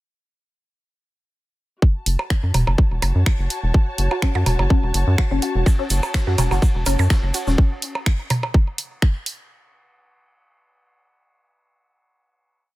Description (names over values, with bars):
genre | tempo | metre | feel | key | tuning
minimal techno | 125 BPM | 4/4 | swing 54% on 16ths | F# minor | A4 = 441 Hz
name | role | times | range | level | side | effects
electronic kick drum | drums | 1.8-9.1 s | none | -16 LUFS | equal | none
muted studio string section | texture | 1.8-7.6 s | F#4 to A5 | -30 LUFS | left 1 dB | sidechain pumping
rubbery square bass | bass | 2.1-7.6 s | E1 to F#2 | -19 LUFS | equal | sidechain pumping
garage drum kit | drums | 2.1-9.4 s | finger snaps, hi-hat | -27 LUFS | right 1 dB | none
electronic percussion blips and toms | percussion | 2.2-8.5 s | none | -24 LUFS | right 2 dB | overdrive, digital delay
resonant blip pluck | riff | 4.1-7.5 s | C#4 to F#4 | -27 LUFS | left 2 dB | phaser, wide subtle chorus, cassette tape, sidechain pumping, digital delay
vintage drum kit | drums | 5.7-7.6 s | ride cymbal, snare drum | -38 LUFS | equal | high-pass filter on cymbals, high-pass filter on snare, high-pass filter on room
egg shaker | percussion | 5.7-7.6 s | none | -31 LUFS | right 5 dB | none
room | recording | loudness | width
small room ambience | none | -17 LUFS | side -18 dB against mid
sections
1.8-9.5 groove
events
fade-in on string section 1.8-7.6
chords
1.8 F#m